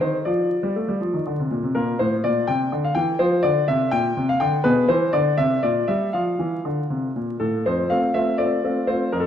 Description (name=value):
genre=classical-period piano sonatina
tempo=82 BPM (dotted quarters)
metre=6/8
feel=straight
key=F major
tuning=A4 = 443 Hz
part: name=bright baby grand piano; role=solo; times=0.0-9.3 s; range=F2 to G5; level=-19 LUFS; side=left 1 dB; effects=none
room=wet recital hall reverb, RT60 1.6 s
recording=dark, warm production, vinyl crackle, lossy compression artefacts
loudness=-19 LUFS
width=side -9 dB against mid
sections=0.0-7.7 A section; 7.7-9.3 B section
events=none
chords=0.3 F69; 1.0 F5; 1.8 Bbmaj9; 2.5 C; 3.2 F5; 3.9 Gm/Bb; 4.7 E7b13/B; 5.4 C5; 6.1 F